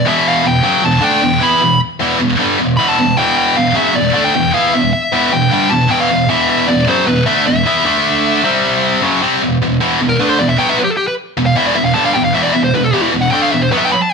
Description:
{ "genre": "metal", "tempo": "154 BPM", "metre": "4/4", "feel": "straight", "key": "E minor", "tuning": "A4 = 440 Hz", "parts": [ { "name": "nasal lead guitar with a parked wah", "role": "melody", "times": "0.0-14.1 s", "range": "E4 to B5", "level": "-15 LUFS", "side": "left 1 dB", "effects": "overdrive" }, { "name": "heavy high-gain guitar", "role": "riff", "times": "0.1-13.9 s", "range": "E2 to E4", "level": "-12 LUFS", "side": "equal", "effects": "distortion" } ], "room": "moderate stone room reverb, RT60 1.1 s", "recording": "band playing live in one room", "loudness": "-11 LUFS", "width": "side -5 dB against mid", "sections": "0.0-9.4 A section; 9.4-14.1 B section", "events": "lead electric guitar solo 9.4-14.1", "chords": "0.0 Em; 7.9 D5; 8.4 C5; 9.0 F#5; 9.4 E5", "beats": "| 0.06 0.45 0.84 1.23 | 1.62 2.00 2.40 2.79 | 3.17 3.56 3.95 4.34 | 4.73 5.12 5.51 5.90 | 6.29 6.68 7.07 7.46 | 7.85 8.24 8.63 9.02 | 9.41 9.80 10.19 10.58 | 10.97 11.37 11.76 12.15 | 12.54 12.93 13.32 13.71 | 14.10" }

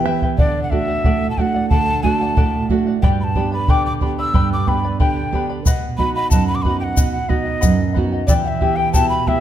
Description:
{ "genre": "andean folk, Andean ensemble", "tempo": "91 BPM", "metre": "2/4", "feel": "straight", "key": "unclear", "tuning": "A4 = 440 Hz", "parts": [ { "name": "charango", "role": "accompaniment", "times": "0.0-9.4 s", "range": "E4 to B5", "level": "-24 LUFS", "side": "left 8 dB", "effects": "none" }, { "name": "nylon-string guitar", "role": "accompaniment", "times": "0.0-9.4 s", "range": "F#2 to E5", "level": "-20 LUFS", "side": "right 5 dB", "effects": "none" }, { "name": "bombo", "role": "percussion", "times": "0.1-9.4 s", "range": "none", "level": "-19 LUFS", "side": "equal", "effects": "none" }, { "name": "breathy quena", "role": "melody", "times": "0.4-9.4 s", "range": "D5 to E6", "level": "-22 LUFS", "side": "equal", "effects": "none" }, { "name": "tube shaker", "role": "percussion", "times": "5.7-9.1 s", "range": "none", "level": "-28 LUFS", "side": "left 6 dB", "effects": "none" } ], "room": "wet recital hall reverb, RT60 1.4 s", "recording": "none", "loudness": "-15 LUFS", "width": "side -11 dB against mid", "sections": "0.4-9.4 A section", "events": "nylon-string guitar fill 0.0-0.4", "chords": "0.4 D; 3.0 G; 5.7 B; 8.3 Em", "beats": "| 0.39 1.05 | 1.71 2.37 | 3.03 3.68 | 4.34 5.00 | 5.66 6.32 | 6.97 7.63 | 8.29 8.94" }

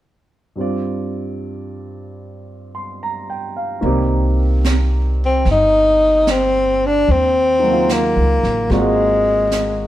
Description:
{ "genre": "jazz ballad", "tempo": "74 BPM", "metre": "4/4", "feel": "swing 69% on 8ths", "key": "C minor", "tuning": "A4 = 439 Hz", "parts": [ { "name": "warm grand piano", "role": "accompaniment", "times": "0.6-9.9 s", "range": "G2 to C6", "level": "-22 LUFS", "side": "right 2 dB", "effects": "none" }, { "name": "upright bass", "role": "bass", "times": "3.8-9.9 s", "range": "G1 to Eb2", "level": "-19 LUFS", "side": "equal", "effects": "none" }, { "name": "jazz brush drum kit", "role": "drums", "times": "3.8-9.9 s", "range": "brushed snare drum, hi-hat, snare drum", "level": "-25 LUFS", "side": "right 5 dB", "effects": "none" }, { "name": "breathy tenor saxophone", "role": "melody", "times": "5.3-9.9 s", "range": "Ab3 to Eb4", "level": "-14 LUFS", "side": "left 1 dB", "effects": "none" } ], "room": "moderate stone room reverb, RT60 1.0 s", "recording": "band playing live in one room", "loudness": "-14 LUFS", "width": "side -14 dB against mid", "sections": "0.6-3.8 A section; 3.8-9.9 B section", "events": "none", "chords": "0.6 G7sus4; 3.8 Cm9; 7.1 Ebm9; 8.7 Ab13", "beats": "| 0.57 1.39 2.20 3.01 | 3.83 4.64 5.45 6.27 | 7.08 7.89 8.70 9.51" }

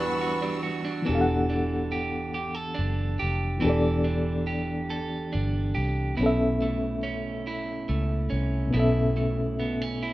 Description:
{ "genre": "slow six-eight R&B", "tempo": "47 BPM (dotted quarters)", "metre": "6/8", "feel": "straight", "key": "E dorian", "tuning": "A4 = 439 Hz", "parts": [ { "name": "electric guitar at the edge of break-up", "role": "second line", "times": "0.0-10.1 s", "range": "B2 to A4", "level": "-30 LUFS", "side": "right 3 dB", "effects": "none" }, { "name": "reed electric piano", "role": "accompaniment", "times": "0.0-10.1 s", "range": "B2 to F#5", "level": "-28 LUFS", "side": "left 1 dB", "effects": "fast tremolo" }, { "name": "warm studio string section", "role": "sustained chords", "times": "0.0-1.1 s", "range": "G3 to E6", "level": "-35 LUFS", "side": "right 1 dB", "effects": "none" }, { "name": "mellow horn section", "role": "stabs", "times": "0.0-0.6 s", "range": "G3 to B4", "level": "-30 LUFS", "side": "equal", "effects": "plate reverb" }, { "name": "vintage muted fingered electric bass", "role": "bass", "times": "0.0-10.1 s", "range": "E1 to C#2", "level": "-29 LUFS", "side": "equal", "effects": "none" } ], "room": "moderate small room reverb, RT60 0.5 s", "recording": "rough home demo mix", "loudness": "-24 LUFS", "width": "side -16 dB against mid", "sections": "0.0-1.1 A section; 1.1-10.1 B section", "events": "none", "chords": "0.0 Em9; 1.1 Em11; 6.2 B9sus4", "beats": "| 1.08 2.35 | 3.63 4.91 | 6.18 7.46 | 8.74 10.01" }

